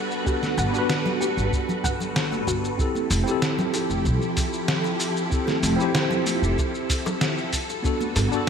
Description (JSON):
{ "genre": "sunset chillout", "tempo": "95 BPM", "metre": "4/4", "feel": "straight", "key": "F major", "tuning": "A4 = 438 Hz", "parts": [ { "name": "tine electric piano", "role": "accompaniment", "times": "0.0-8.5 s", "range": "B3 to C5", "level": "-27 LUFS", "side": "equal", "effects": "medium stereo tremolo, auto-pan, vintage 12-bit sampler grit, digital delay" }, { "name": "soft string machine", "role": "sustained chords", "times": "0.0-8.5 s", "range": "F3 to B4", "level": "-28 LUFS", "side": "equal", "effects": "phaser, ensemble chorus" }, { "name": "dusty soul sampler-style drum kit", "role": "drums", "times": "0.1-8.4 s", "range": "hi-hat, shaker, snare drum", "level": "-28 LUFS", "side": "equal", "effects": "studio reverb, gated reverb" }, { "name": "soft round pluck", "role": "arpeggios", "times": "0.3-2.8 s", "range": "F#4 to F#5", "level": "-33 LUFS", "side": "left 3 dB", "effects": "lush chorus, digital delay" }, { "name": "electronic kick drum", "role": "drums", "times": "0.3-8.0 s", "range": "none", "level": "-26 LUFS", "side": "equal", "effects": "studio reverb" }, { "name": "congas and bongos", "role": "percussion", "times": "0.4-8.3 s", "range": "none", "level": "-33 LUFS", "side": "left 1 dB", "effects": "none" }, { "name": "upright bass", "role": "bass", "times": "0.6-8.3 s", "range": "F1 to C2", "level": "-26 LUFS", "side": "equal", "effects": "none" } ], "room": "moderate plate reverb, RT60 3.2 s", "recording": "bright 1980s-style digital production", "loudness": "-21 LUFS", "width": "side -7 dB against mid", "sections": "0.0-2.8 A section; 2.8-8.5 B section", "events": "none", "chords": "0.0 Gmaj9; 2.8 Fmaj9; 7.5 Gmaj9" }